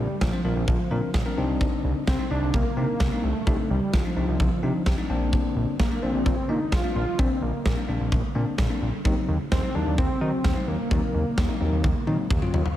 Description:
synth-pop; 129 BPM; 4/4; straight; A4 = 441 Hz
wide unison lead; melody; 0.0-12.3 s; F3 to F4; -29 LUFS; equal; digital delay
bell-like tine electric piano; accompaniment; 0.0-12.6 s; Gb3 to C5; -30 LUFS; left 3 dB
fat analog bass; bass; 0.0-12.6 s; Bb1 to Eb3; -27 LUFS; equal
huge arena drum kit; drums; 0.2-12.8 s; kick drum, snare drum, toms; -25 LUFS; equal
light reverb; -22 LUFS; side -12 dB against mid
0.0-12.8 A section
drum fill 11.8-12.8
0.0 Bbadd9; 1.4 Cmadd9; 5.1 Bbadd9; 9.1 Ebm6

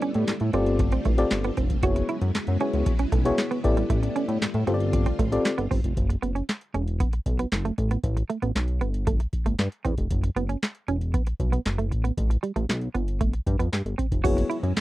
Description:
early-eighties boogie funk; 116 BPM; 4/4; straight; F# phrygian; A4 = 441 Hz
FM electric piano with tremolo; accompaniment; 0.0-5.6, 14.2-14.6 s; B3 to D5; -26 LUFS; left 3 dB
string machine, full ensemble; sustained chords; 0.0-6.0, 14.2-14.8 s; C#3 to F4; -34 LUFS; equal; ensemble chorus
semi-hollow electric guitar; riff; 0.0-14.6 s; G3 to F#4; -29 LUFS; right 5 dB; analog chorus
booming analog drum machine; drums; 0.0-14.8 s; crash cymbal, handclaps, hi-hat, kick drum, snare drum; -25 LUFS; equal
chorused synth bass; bass; 0.1-14.8 s; E1 to A2; -26 LUFS; equal
little or no reverb; dry, close 1970s-style studio recording; -23 LUFS; side -16 dB against mid
0.0-6.0 A section; 6.0-14.2 B section
0.0 A9sus4; 0.5 G9sus4; 1.8 F#9sus4; 3.6 A9sus4; 4.7 G9sus4; 6.0 F#7sus4; 7.8 Asus2; 8.8 G7sus2; 10.1 F#7sus4; 11.9 Asus2; 12.9 G7(no3); 14.2 F#9sus4

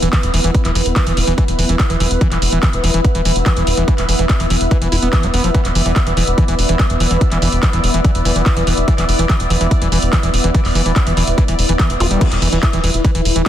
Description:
psychedelic trance; 144 BPM; 4/4; straight; A4 = 440 Hz
bubbling stepped-filter texture; sustained chords; 0.0-13.5 s; E3 to D5; -22 LUFS; equal; chorus, built-in reverb, sidechain pumping
screaming distorted acid line; riff; 0.0-13.5 s; E3 to F4; -22 LUFS; equal; distortion, chorus, auto-pan, sidechain pumping, digital delay
tight sequencer bass; bass; 0.0-13.4 s; E1 to F1; -17 LUFS; equal
techno drum kit; drums; 0.0-13.5 s; crash cymbal, handclaps, hi-hat; -21 LUFS; equal
deep dark ambient pad; texture; 0.0-13.5 s; E4 to E6; -23 LUFS; left 1 dB; chorus, built-in reverb, sidechain pumping
electronic kick drum; drums; 0.1-13.5 s; -15 LUFS; equal
zap; sound effects; 12.0-12.1 s; -26 LUFS; equal
little or no reverb; dense, heavily limited modern master; -12 LUFS; side -11 dB against mid
0.0-13.5 A section
0.0 E5

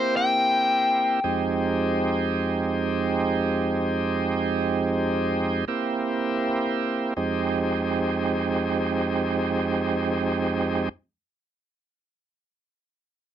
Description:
blues; free time; F minor; A4 = 440 Hz
overdriven electric guitar; melody; 0.0-2.3 s; C5 to G5; -22 LUFS; left 3 dB
bright tonewheel organ; accompaniment; 0.0-10.9 s; F2 to G4; -23 LUFS; right 3 dB; slow rotary speaker, overdrive
light reverb; dry, close 1970s-style studio recording; -22 LUFS; side -10 dB against mid
0.0-7.2 A section; 7.2-10.1 B section
0.0 C7; 1.2 Fm9; 5.7 C7; 7.2 Fm9

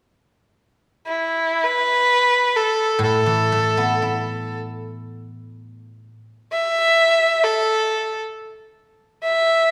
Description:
chinese traditional, Chinese chamber ensemble; free time; A4 = 440 Hz
clear erhu; melody; 1.1-9.7 s; E4 to E5; -20 LUFS; equal
guzheng; accompaniment; 3.0-6.1 s; A2 to E4; -27 LUFS; equal
wet recital hall reverb, RT60 1.6 s; recorded in a church or concert hall; -19 LUFS; mono
0.2-8.4 A section; 8.4-9.7 B section

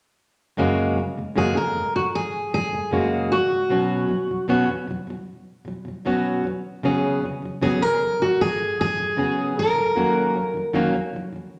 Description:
pop; 77 BPM; 4/4; straight; F# major; A4 = 441 Hz
fingerpicked plugged-in steel-string acoustic guitar; accompaniment; 0.6-11.6 s; F#2 to G#4; -25 LUFS; equal
picked steel-string acoustic guitar; melody; 1.4-10.7 s; F#4 to A#4; -24 LUFS; equal
wet large studio reverb, RT60 1.3 s; -23 LUFS; mono
0.6-11.6 A section
0.6 F#add9; 3.7 Bsus2; 6.8 C#7sus4; 10.0 D#m7

